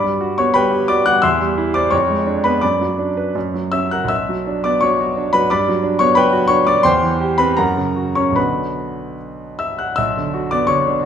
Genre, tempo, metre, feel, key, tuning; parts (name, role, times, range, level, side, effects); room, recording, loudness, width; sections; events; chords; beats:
classical, romantic character piece for solo piano; 72-91 BPM; 2/4; rubato; B minor; A4 = 439 Hz
clear concert grand piano; solo; 0.0-11.1 s; B1 to F#6; -15 LUFS; equal
wet recital hall reverb, RT60 1.4 s; -14 LUFS; side -8 dB against mid
0.0-10.0 A section; 10.0-11.1 B section
0.0 Gmaj7; 1.2 C/E; 1.9 Fdim7; 2.6 Bm/F#; 3.3 F#; 4.1 Bm; 5.5 Gmaj7; 6.8 C/E; 7.6 F#; 8.4 Bm
0.55 | 1.23 1.91 | 2.62 3.35 | 4.10 4.82 | 5.49 6.16 | 6.84 7.57 | 8.36 9.19 | 9.97 10.69